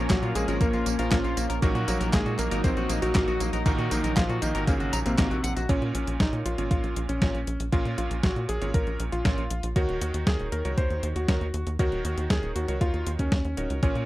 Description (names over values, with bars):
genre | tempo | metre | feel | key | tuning
italo disco | 118 BPM | 4/4 | straight | unclear | A4 = 440 Hz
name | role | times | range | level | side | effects
warm electric grand piano | melody | 0.0-14.0 s | C3 to C5 | -31 LUFS | equal | tape echo
lush unison pad | sustained chords | 0.0-5.7 s | F3 to Eb4 | -33 LUFS | left 1 dB | chorus
clean electric guitar | arpeggios | 0.0-5.7 s | Bb3 to Bb5 | -34 LUFS | left 3 dB | tape echo
clear electric grand piano | stabs | 0.0-14.1 s | Bb2 to Db5 | -34 LUFS | right 3 dB | tape echo
tight sequencer bass | bass | 0.0-14.1 s | Eb1 to Bb2 | -30 LUFS | equal | none
clean 12-bit digital drum machine | drums | 0.1-14.1 s | handclaps, hi-hat, snare drum, tambourine | -30 LUFS | equal | overdrive
electronic kick drum | drums | 0.1-13.9 s | none | -25 LUFS | equal | overdrive
room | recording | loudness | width
little or no reverb | dry, close 1970s-style studio recording | -24 LUFS | side -16 dB against mid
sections
0.0-5.7 A section; 5.7-14.1 B section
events
none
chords
0.0 Bbm; 1.6 Ebm; 5.7 Bbm; 9.8 Ebm7